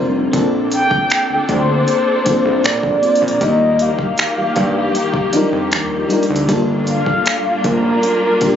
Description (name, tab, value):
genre	contemporary R&B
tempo	78 BPM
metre	4/4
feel	straight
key	unclear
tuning	A4 = 439 Hz
part	mellow horn-like synth lead	melody	0.0-8.6 s	Bb4 to G5	-17 LUFS	equal	chorus, ping-pong delay
part	mellow FM electric piano	accompaniment	0.0-8.6 s	F3 to C5	-19 LUFS	left 1 dB	chorus
part	warm studio string section	sustained chords	0.0-8.6 s	C3 to A4	-22 LUFS	left 1 dB	none
part	fat analog bass	bass	0.0-8.5 s	F1 to G2	-20 LUFS	right 1 dB	none
part	smooth R&B drum kit	drums	0.3-8.6 s	finger snaps, hi-hat, kick drum	-20 LUFS	equal	overdrive
room	light reverb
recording	recorded on a phone in the room, studio reverb, compression, nothing above 7.6 kHz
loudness	-13 LUFS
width	side -9 dB against mid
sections	0.0-8.6 A section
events	none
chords	0.3 Bbmaj7; 3.4 Ebmaj7; 6.5 Gm7